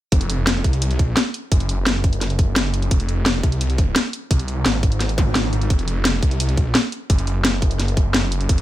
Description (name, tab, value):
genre	dark technical drum and bass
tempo	172 BPM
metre	4/4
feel	straight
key	F phrygian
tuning	A4 = 439 Hz
part	snarling distorted saw bass	bass	0.1-8.6 s	F1 to C2	-21 LUFS	equal	distortion, overdrive, sidechain pumping
part	drum and bass drum kit	drums	0.1-8.6 s	hi-hat, snare drum	-21 LUFS	equal	studio reverb
part	electronic kick drum	drums	0.1-8.6 s	none	-17 LUFS	equal	studio reverb
part	zap	sound effects	5.2-5.3 s	none	-27 LUFS	equal	none
room	little or no reverb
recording	none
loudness	-17 LUFS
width	side -14 dB against mid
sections	0.1-8.6 A section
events	none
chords	none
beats	| 0.12 0.47 0.82 1.17 | 1.52 1.86 2.21 2.56 | 2.91 3.26 3.61 3.96 | 4.31 4.66 5.00 5.35 | 5.70 6.05 6.40 6.75 | 7.10 7.45 7.80 8.14 | 8.49